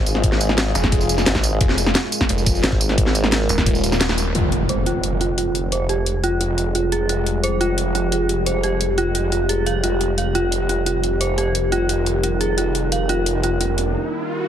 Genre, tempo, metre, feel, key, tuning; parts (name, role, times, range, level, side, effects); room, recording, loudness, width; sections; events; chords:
dark technical drum and bass; 175 BPM; 4/4; straight; F minor; A4 = 440 Hz
deep dark ambient pad; sustained chords; 0.0-14.5 s; Ab3 to Bb4; -24 LUFS; left 1 dB; chorus, built-in reverb, sidechain pumping
formant-sweep wobble bass; bass; 0.0-3.5 s; Ab1; -21 LUFS; equal; chorus
drum and bass drum kit; drums; 0.1-13.8 s; hi-hat, snare drum, tambourine; -22 LUFS; equal
electronic kick drum; drums; 0.2-3.7 s; -20 LUFS; equal
snarling distorted saw bass; bass; 0.8-13.9 s; Eb1 to F1; -23 LUFS; equal; distortion, tube saturation
dark detuned synth bell; arpeggios; 4.4-13.7 s; F4 to F5; -22 LUFS; right 2 dB; chorus, tremolo, sidechain pumping, low-pass filter, dub echo
impact and riser; sound effects; 4.4-5.7, 13.4-14.5 s; -25 LUFS; equal
light reverb; heavily compressed radio sound; -17 LUFS; side -9 dB against mid
0.0-4.3 A section; 4.3-14.5 B section
drop 0.0-4.3; kick drops out 4.0-4.3; band accent 4.0; impact 4.3-5.7; filter sweep on synth bell 4.3-14.5; riser 13.4-14.5; break 13.9-14.5
0.0 Fm; 4.3 Fmadd9